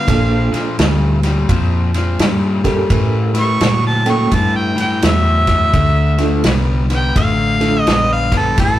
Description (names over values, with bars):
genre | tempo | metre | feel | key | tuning
electric blues shuffle | 85 BPM | 4/4 | swing 63% on 8ths | D minor | A4 = 437 Hz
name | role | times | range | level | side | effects
bright harmonica | melody | 0.0-8.8 s | A4 to C#6 | -18 LUFS | equal | overdrive
overdriven electric guitar | riff | 0.0-8.8 s | A2 to B3 | -20 LUFS | left 3 dB | none
reed electric piano | accompaniment | 0.1-7.8 s | A3 to G5 | -20 LUFS | right 3 dB | fast tremolo
vintage muted fingered electric bass | bass | 0.1-8.8 s | A1 to Bb2 | -17 LUFS | equal | none
natural country drum kit | drums | 0.1-8.8 s | kick drum, ride cymbal, snare drum | -18 LUFS | equal | none
room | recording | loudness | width
moderate stone room reverb, RT60 1.0 s | rough rehearsal-room recording, tube saturation | -12 LUFS | side -13 dB against mid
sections
0.0-8.8 A section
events
none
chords
0.1 Bbmaj7; 2.9 A7b9; 5.7 Dm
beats
| 0.07 0.78 1.49 2.20 | 2.91 3.62 4.32 5.03 | 5.74 6.45 7.16 7.87 | 8.58